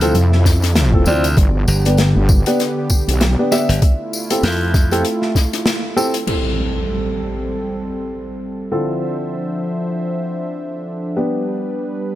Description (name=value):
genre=glitch hop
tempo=98 BPM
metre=4/4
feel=swing 58% on 16ths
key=A minor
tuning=A4 = 440 Hz
part: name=warm analog pad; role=sustained chords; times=0.0-12.2 s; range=C3 to E5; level=-23 LUFS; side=equal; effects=chorus, sidechain pumping
part: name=dark grand piano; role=stabs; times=0.0-12.2 s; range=D3 to E5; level=-21 LUFS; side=equal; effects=sidechain pumping, low-pass filter, digital delay
part: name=glassy slap bass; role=bass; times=0.0-5.0 s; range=G1 to F2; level=-16 LUFS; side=equal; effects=none
part: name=big rock drum kit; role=drums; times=0.0-6.4 s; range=crash cymbal, hi-hat, snare drum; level=-22 LUFS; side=left 2 dB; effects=none
part: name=tambourine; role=percussion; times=0.0-6.2 s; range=none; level=-28 LUFS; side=left 2 dB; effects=none
part: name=wobble bass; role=bass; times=0.1-3.4 s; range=G1 to F2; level=-14 LUFS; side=equal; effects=chorus, overdrive
part: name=electronic kick drum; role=drums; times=0.5-5.5 s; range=none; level=-13 LUFS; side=equal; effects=overdrive
part: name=impact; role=sound effects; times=6.3-8.7 s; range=none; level=-25 LUFS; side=equal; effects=none
room=light reverb, small room ambience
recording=none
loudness=-15 LUFS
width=side -14 dB against mid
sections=0.0-6.3 A section; 6.3-12.2 B section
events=drop 0.0-6.3; band accent 5.7-6.0; impact 6.3-8.7; filter sweep on grand piano 6.3-12.2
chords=0.0 Dm9; 1.4 G; 3.8 Fmaj7; 6.3 Am7; 8.7 Dm9; 11.2 G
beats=0.15 0.76 | 1.37 1.99 2.60 3.21 | 3.82 4.43 5.05 5.66 | 6.27 6.88 7.50 8.11 | 8.72 9.33 9.95 10.56 | 11.17 11.78